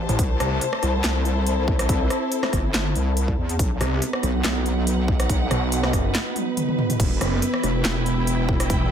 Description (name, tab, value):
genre	heavy wobble dubstep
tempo	141 BPM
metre	4/4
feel	swing 53% on 16ths, half-time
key	unclear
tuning	A4 = 441 Hz
part	evolving wavetable pad	sustained chords	0.0-8.9 s	E3 to E5	-28 LUFS	right 3 dB	chorus, built-in reverb, sidechain pumping
part	wobble bass	bass	0.0-8.9 s	E1 to E2	-24 LUFS	equal	chorus, overdrive
part	warm symphonic string section	texture	0.0-8.9 s	D#4 to A5	-29 LUFS	left 2 dB	sidechain pumping
part	snarling distorted saw bass	bass	0.1-0.6, 3.8-7.4 s	F#1 to C2	-23 LUFS	equal	distortion, overdrive
part	big-room dance drum kit	drums	0.1-8.8 s	crash cymbal, handclaps, hi-hat, rim click, snare drum, toms	-26 LUFS	equal	none
part	electronic kick drum	drums	0.2-8.8 s	none	-23 LUFS	equal	none
room	little or no reverb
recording	none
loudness	-20 LUFS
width	side -8 dB against mid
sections	0.0-8.9 A section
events	drum fill 6.4-7.0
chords	0.2 C6; 3.6 B; 7.0 Em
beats	| 0.19 0.61 1.04 1.47 | 1.89 2.32 2.74 3.17 | 3.59 4.02 4.44 4.87 | 5.29 5.72 6.15 6.57 | 7.00 7.42 7.85 8.27 | 8.70